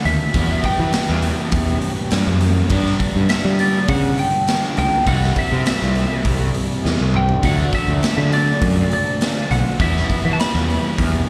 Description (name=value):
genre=indie rock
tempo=102 BPM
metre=4/4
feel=straight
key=unclear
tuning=A4 = 435 Hz
part: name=lightly driven lead guitar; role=melody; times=0.0-10.9 s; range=D5 to B5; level=-25 LUFS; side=equal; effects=slapback echo
part: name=electric guitar through a small old amp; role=riff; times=0.0-11.3 s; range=E2 to G4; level=-31 LUFS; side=equal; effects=none
part: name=overdriven electric guitar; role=riff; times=0.0-11.3 s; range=G2 to E4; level=-27 LUFS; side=equal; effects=lush chorus, slapback echo
part: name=fuzz picked electric bass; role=bass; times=0.1-11.2 s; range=B1 to G3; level=-21 LUFS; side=equal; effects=overdrive
part: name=raw garage drum kit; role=drums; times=0.1-11.1 s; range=hi-hat, kick drum, snare drum, toms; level=-24 LUFS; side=equal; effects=none
room=studio reverb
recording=live gig heard through the venue's PA, club reverb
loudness=-18 LUFS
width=mono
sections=0.0-11.3 A section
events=drum fill 6.8-7.4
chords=0.3 Emadd9; 2.7 G; 5.1 C; 7.4 D; 9.8 Emadd9